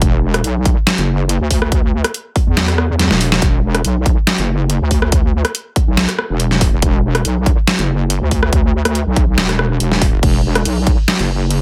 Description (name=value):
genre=heavy wobble dubstep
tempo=141 BPM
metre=4/4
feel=swing 53% on 16ths, half-time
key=unclear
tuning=A4 = 440 Hz
part: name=wobble bass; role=bass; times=0.0-11.6 s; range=E1 to E2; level=-18 LUFS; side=equal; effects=chorus, overdrive
part: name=dubstep drum kit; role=drums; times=0.0-11.6 s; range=crash cymbal, hi-hat, rim click, snare drum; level=-19 LUFS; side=equal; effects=overdrive
part: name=electronic kick drum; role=drums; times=0.0-11.0 s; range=none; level=-17 LUFS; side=equal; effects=overdrive
room=little or no reverb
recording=none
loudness=-15 LUFS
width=mono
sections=0.0-11.6 A section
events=kick drops out 2.6-3.4; drum fill 3.0-3.4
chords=none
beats=| 0.02 0.44 0.87 1.29 | 1.72 2.14 2.57 3.00 | 3.42 3.85 4.27 4.70 | 5.12 5.55 5.97 6.40 | 6.83 7.25 7.68 8.10 | 8.53 8.95 9.38 9.80 | 10.23 10.65 11.08 11.51